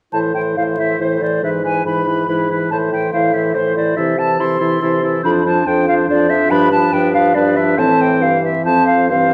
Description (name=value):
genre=quick classical-period movement for wind quintet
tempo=141 BPM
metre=3/4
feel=rubato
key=A minor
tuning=A4 = 440 Hz
part: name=concert flute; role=melody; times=0.1-9.3 s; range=C5 to C6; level=-20 LUFS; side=equal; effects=none
part: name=clear oboe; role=second line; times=0.1-9.3 s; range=A4 to C5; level=-25 LUFS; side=equal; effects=none
part: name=bright clarinet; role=accompaniment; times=0.1-9.3 s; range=C4 to E4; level=-23 LUFS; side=equal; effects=none
part: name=clear French horn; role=accompaniment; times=0.1-9.3 s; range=E3 to F3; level=-25 LUFS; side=equal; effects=none
part: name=mellow bassoon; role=bass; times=0.1-9.3 s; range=F2 to C3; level=-21 LUFS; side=equal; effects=none
room=wet recital hall reverb, RT60 1.4 s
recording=vinyl crackle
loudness=-16 LUFS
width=mono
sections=0.1-9.3 A section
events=none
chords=0.1 Am; 1.4 E/G#; 2.7 Am; 4.0 Am/C; 5.2 Dm7/F; 6.5 G7; 7.8 Am; 8.6 F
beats=| 0.13 0.57 1.00 | 1.43 1.86 2.29 | 2.71 3.13 3.55 | 3.97 4.40 4.82 | 5.24 5.66 6.08 | 6.50 6.93 7.35 | 7.78 8.21 8.65 | 9.10